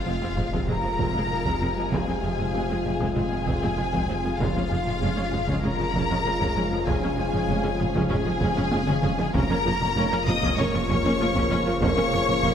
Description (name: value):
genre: cinematic, hybrid orchestral and electronic film score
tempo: 97 BPM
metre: 4/4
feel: straight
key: F minor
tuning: A4 = 439 Hz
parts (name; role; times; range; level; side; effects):
- warm symphonic violin section; melody; 0.0-12.5 s; F5 to Eb6; -29 LUFS; left 3 dB; none
- rich symphonic violin section; second line; 0.0-12.5 s; F4 to Eb5; -33 LUFS; left 4 dB; none
- bright trombone section; sustained chords; 0.0-12.5 s; C3 to F3; -34 LUFS; right 3 dB; none
- ethereal airy pad; sustained chords; 0.0-12.5 s; Bb3 to F5; -34 LUFS; equal; ensemble chorus, built-in reverb
- mellow French horn section; sustained chords; 0.0-12.5 s; Ab3 to F4; -34 LUFS; left 6 dB; none
- wide detuned saw bass; bass; 0.0-12.5 s; F1; -33 LUFS; equal; chorus
- sub drop; sound effects; 0.0-1.9 s; none; -38 LUFS; equal; none
- warm symphonic viola section; accompaniment; 0.1-12.5 s; F3 to Db4; -31 LUFS; equal; none
- resonant blip pluck; arpeggios; 0.1-12.5 s; Db3 to Bb4; -36 LUFS; equal; none
- rich symphonic cello section; bass; 0.1-12.5 s; F2; -32 LUFS; right 2 dB; none
- warm symphonic double bass section; bass; 0.1-12.5 s; F1; -32 LUFS; right 3 dB; none
- taiko ensemble; drums; 0.4-12.5 s; none; -30 LUFS; equal; none
room: moderate scoring stage reverb, RT60 1.8 s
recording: none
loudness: -22 LUFS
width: side -8 dB against mid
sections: 0.0-12.5 A section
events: impact 0.0-1.9; drum fill 8.7-9.3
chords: 0.0 Fm; 4.4 Db/F; 9.3 Bbm/F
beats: 0.07 0.68 1.30 | 1.92 2.54 3.16 3.78 | 4.39 5.01 5.63 6.25 | 6.87 7.49 8.11 8.72 | 9.34 9.96 10.58 11.20 | 11.82 12.44